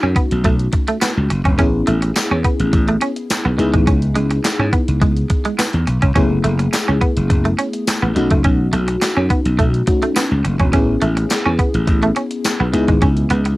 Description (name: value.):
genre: early-eighties boogie funk.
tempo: 105 BPM.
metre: 4/4.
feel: straight.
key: unclear.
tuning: A4 = 438 Hz.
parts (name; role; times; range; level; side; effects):
FM electric piano with soft pad layer; accompaniment; 0.0-13.6 s; A3 to G#4; -21 LUFS; left 2 dB; chorus, tremolo, cassette tape, plate reverb.
clean electric guitar; riff; 0.0-13.5 s; G#3 to C#4; -21 LUFS; right 2 dB; wide subtle chorus, cassette tape.
slap bass; bass; 0.0-13.5 s; E1 to G#2; -17 LUFS; equal; none.
crisp 8-bit digital drum machine; drums; 0.2-13.6 s; handclaps, hi-hat, kick drum, snare drum; -18 LUFS; equal; none.
tambourine; percussion; 1.0-12.6 s; none; -26 LUFS; left 3 dB; none.
room: light reverb.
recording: home recording on cassette.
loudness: -14 LUFS.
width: side -19 dB against mid.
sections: 0.0-13.6 A section.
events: none.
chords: 0.0 B9; 1.6 Amaj9; 3.6 C#m9; 6.2 F#m11; 8.2 B9; 10.7 Amaj9; 12.7 C#m9.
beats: 0.45 1.02 | 1.59 2.16 2.73 3.30 | 3.87 4.45 5.02 5.59 | 6.16 6.73 7.30 7.87 | 8.45 9.02 9.59 10.16 | 10.73 11.30 11.87 12.45 | 13.02.